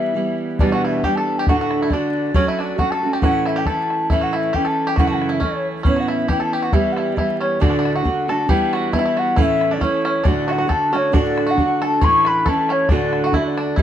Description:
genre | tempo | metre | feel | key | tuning
celtic folk, Celtic polka | 137 BPM | 2/4 | swing 54% on 8ths | unclear | A4 = 439 Hz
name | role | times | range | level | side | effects
mellow hollow wooden flute | melody | 0.0-13.8 s | C#5 to C#6 | -21 LUFS | left 4 dB | none
fingerpicked steel-string acoustic guitar | accompaniment | 0.0-13.8 s | D2 to G4 | -20 LUFS | right 3 dB | none
bluegrass banjo | second line | 0.6-13.8 s | C#4 to C#5 | -26 LUFS | right 3 dB | none
bodhran | percussion | 0.6-13.8 s | none | -20 LUFS | equal | none
room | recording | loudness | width
light reverb | dark, warm production, vinyl crackle | -16 LUFS | side -10 dB against mid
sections
0.6-7.6 A section; 7.6-13.8 B section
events
none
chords
0.0 Em; 0.6 Em7; 1.5 D; 2.3 F#m; 3.2 A; 5.0 F#m7; 5.9 Aadd9; 6.7 Em; 7.6 D; 8.5 Em; 9.4 A; 10.3 D; 12.0 A; 12.9 D

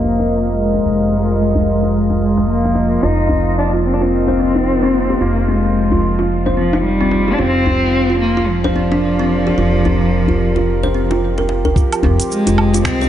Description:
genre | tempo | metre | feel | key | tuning
organic downtempo | 110 BPM | 4/4 | swing 60% on 16ths | F dorian | A4 = 440 Hz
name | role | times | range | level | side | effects
warm cello | melody | 0.0-13.1 s | F3 to Eb4 | -17 LUFS | left 1 dB | tape echo, shimmer reverb
warm analog pad | sustained chords | 0.0-13.1 s | F3 to Eb5 | -21 LUFS | right 1 dB | chorus, sidechain pumping, shimmer reverb
upright bass | bass | 0.0-13.1 s | F1 to C2 | -19 LUFS | equal | sidechain pumping
djembe | percussion | 0.0-13.1 s | none | -22 LUFS | left 1 dB | none
kalimba | arpeggios | 3.0-13.1 s | C4 to C5 | -20 LUFS | right 1 dB | tape echo, shimmer reverb
afro-pop drum kit | drums | 11.8-13.1 s | cabasa, finger snaps, hi-hat, woodblock | -22 LUFS | right 3 dB | low-pass filter on perc, low-pass filter on hats, low-pass filter on snare
electronic kick drum | drums | 11.8-13.0 s | none | -16 LUFS | equal | none
room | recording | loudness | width
light reverb, small room reverb | low-pass filter, nothing above 10.9 kHz | -13 LUFS | side -11 dB against mid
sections
0.0-11.8 A section; 11.8-13.1 B section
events
filter sweep 0.0-11.8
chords
0.0 Fm9; 7.4 Gm7/F; 11.8 Fm9

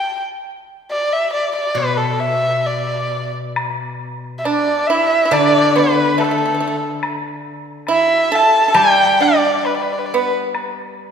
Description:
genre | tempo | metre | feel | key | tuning
chinese traditional, Chinese chamber ensemble | 68 BPM | 2/4 | rubato | D zhi mode | A4 = 440 Hz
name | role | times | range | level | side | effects
warm erhu | melody | 0.0-10.3 s | A4 to A5 | -16 LUFS | equal | none
steel-string zither | accompaniment | 1.7-11.1 s | B2 to G3 | -23 LUFS | left 3 dB | none
woodblock | percussion | 3.6-10.8 s | none | -27 LUFS | left 3 dB | none
pipa | second line | 4.5-10.3 s | A3 to A4 | -19 LUFS | right 4 dB | none
room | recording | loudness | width
wet concert hall reverb, RT60 2.3 s | recorded in a church or concert hall | -14 LUFS | side -7 dB against mid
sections
0.0-3.6 A section; 3.6-11.1 B section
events
none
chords
none

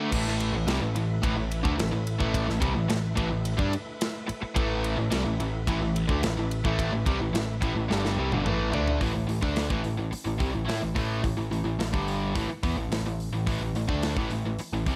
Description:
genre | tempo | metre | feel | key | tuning
hard rock | 108 BPM | 4/4 | straight | unclear | A4 = 440 Hz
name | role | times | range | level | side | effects
overdriven semi-hollow guitar | riff | 0.0-15.0 s | G2 to E4 | -32 LUFS | equal | none
tight distorted guitar | riff | 0.0-15.0 s | G2 to E4 | -36 LUFS | equal | distortion
overdriven tonewheel organ | sustained chords | 0.1-9.0 s | A3 to B4 | -42 LUFS | equal | none
overdriven picked electric bass | bass | 0.1-15.0 s | G1 to A2 | -33 LUFS | equal | none
tight metal drum kit | drums | 0.1-15.0 s | crash cymbal, hi-hat, kick drum, ride cymbal, snare drum, toms | -33 LUFS | equal | none
room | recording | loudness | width
light reverb | none | -28 LUFS | mono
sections
0.1-9.0 A section; 9.0-15.0 B section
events
drum fill 7.9-9.0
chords
0.1 A5

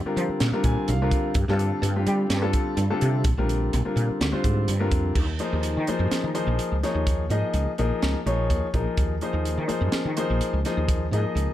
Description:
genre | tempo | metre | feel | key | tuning
electric jazz fusion | 126 BPM | 4/4 | straight | unclear | A4 = 440 Hz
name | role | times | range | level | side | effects
woody fretless electric bass | bass | 0.0-11.5 s | Bb1 to G3 | -25 LUFS | equal | ensemble chorus
warm concert grand piano | accompaniment | 0.1-11.5 s | D3 to Ab5 | -26 LUFS | left 2 dB | none
crisp fusion drum kit | drums | 0.2-11.5 s | crash cymbal, hi-hat, kick drum, snare drum | -27 LUFS | right 1 dB | none
room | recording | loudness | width
little or no reverb | dark, warm production | -22 LUFS | side -13 dB against mid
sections
0.0-5.2 A section; 5.2-11.5 B section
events
grand piano fill 0.4-1.3, 11.4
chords
0.0 Fsus24; 1.3 G9sus4; 3.2 Bb; 5.2 Eb7sus4

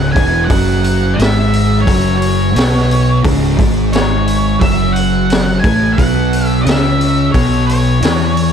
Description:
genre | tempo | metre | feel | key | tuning
stoner and doom metal | 88 BPM | 4/4 | straight | C# minor | A4 = 441 Hz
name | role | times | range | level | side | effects
octave-fuzz lead guitar | melody | 0.0-8.5 s | C#5 to G#5 | -19 LUFS | equal | distortion, digital delay
thick fuzz guitar | riff | 0.0-8.5 s | C#2 to E4 | -17 LUFS | left 12 dB | distortion
thick fuzz guitar | riff | 0.0-8.5 s | C#2 to E4 | -16 LUFS | right 9 dB | distortion
fuzz picked electric bass | bass | 0.0-8.5 s | C#1 to E2 | -17 LUFS | equal | overdrive
raw garage drum kit | drums | 0.2-8.5 s | hi-hat, kick drum, snare drum | -17 LUFS | equal | none
room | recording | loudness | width
light reverb, small room ambience | dark, warm production | -10 LUFS | side -8 dB against mid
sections
0.0-8.5 A section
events
none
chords
0.0 C#m; 4.6 F#5

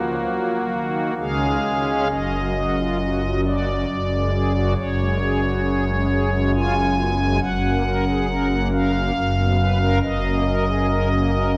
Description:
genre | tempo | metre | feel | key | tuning
classical, chorale-style piece for pipe organ | 68 BPM | 3/4 | rubato | F# major | A4 = 440 Hz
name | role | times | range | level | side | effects
pipe organ, strings celeste | solo | 0.0-11.6 s | F#1 to G#5 | -21 LUFS | equal | none
room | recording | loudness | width
wet church reverb, RT60 3.6 s | worn, warbling old tape, cassette tape, warbly pitch drift | -21 LUFS | mono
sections
0.0-2.1 A section; 2.1-11.6 B section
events
none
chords
0.0 F#; 1.2 C#; 2.1 D#mmaj7/F#; 3.9 D/F#; 4.8 C#5/F#; 7.4 F#; 9.2 F#maj7; 10.0 F#

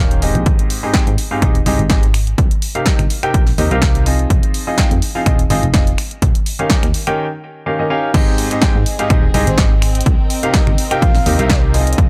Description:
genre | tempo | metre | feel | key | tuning
piano house | 125 BPM | 4/4 | swing 54% on 16ths | Ab major | A4 = 439 Hz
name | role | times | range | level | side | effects
clear grand piano | riff | 0.0-12.1 s | Ab2 to G5 | -22 LUFS | equal | sidechain pumping, low-pass filter, delay
solid FM bass | bass | 0.0-12.1 s | Eb1 to Ab2 | -19 LUFS | equal | sidechain pumping
punchy analog drum machine | drums | 0.1-12.1 s | crash cymbal, finger snaps, hi-hat, snare drum | -24 LUFS | equal | none
electronic kick drum | drums | 0.5-12.1 s | none | -17 LUFS | equal | overdrive
dark chamber string section | texture | 8.1-12.1 s | C4 to G5 | -28 LUFS | equal | sidechain pumping
breathy flute-like synth lead | melody | 9.0-11.6 s | C5 to F5 | -27 LUFS | equal | chorus, delay
room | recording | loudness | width
little or no reverb | none | -15 LUFS | mono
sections
0.0-8.1 A section; 8.1-12.1 B section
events
break 7.2-8.1; drop 8.1-12.1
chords
0.5 Abmaj7; 2.4 Cm7; 4.3 Fm7; 6.0 Eb7; 8.1 Abmaj7; 10.1 Cm7

